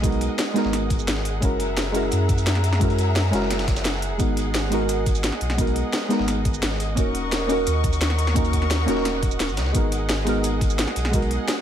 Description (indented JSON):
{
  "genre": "liquid drum and bass",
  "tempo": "173 BPM",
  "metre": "4/4",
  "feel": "straight",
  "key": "G# minor",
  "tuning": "A4 = 439 Hz",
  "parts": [
    { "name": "deep mellow chord stab", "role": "accompaniment", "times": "0.0-11.6 s", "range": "G#3 to A#4", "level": "-25 LUFS", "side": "right 1 dB", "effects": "wide subtle chorus, dub echo" },
    { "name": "rich studio string section", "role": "sustained chords", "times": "0.0-11.6 s", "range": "G#4 to C#6", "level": "-30 LUFS", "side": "left 1 dB", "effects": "sidechain pumping" },
    { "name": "warm sub bass", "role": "bass", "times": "0.0-11.4 s", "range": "D#1 to F#2", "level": "-25 LUFS", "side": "equal", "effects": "none" },
    { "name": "drum and bass drum kit", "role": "drums", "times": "0.0-11.6 s", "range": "hi-hat, shaker, snare drum", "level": "-28 LUFS", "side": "equal", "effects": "none" },
    { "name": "dusty soul sampler-style drum kit", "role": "drums", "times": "0.0-11.6 s", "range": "hi-hat, snare drum", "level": "-33 LUFS", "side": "equal", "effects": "high-pass filter on hats, high-pass filter on snare, high-pass filter on room" },
    { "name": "electronic kick drum", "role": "drums", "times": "0.0-11.2 s", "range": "none", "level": "-23 LUFS", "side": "equal", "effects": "none" }
  ],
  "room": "light reverb, digital ambience",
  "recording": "none",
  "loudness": "-20 LUFS",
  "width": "side -10 dB against mid",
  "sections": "0.0-11.6 A section",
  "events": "none",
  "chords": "0.0 G#m7; 1.4 F#9; 4.2 G#m7; 7.0 D#m7; 9.7 G#m7"
}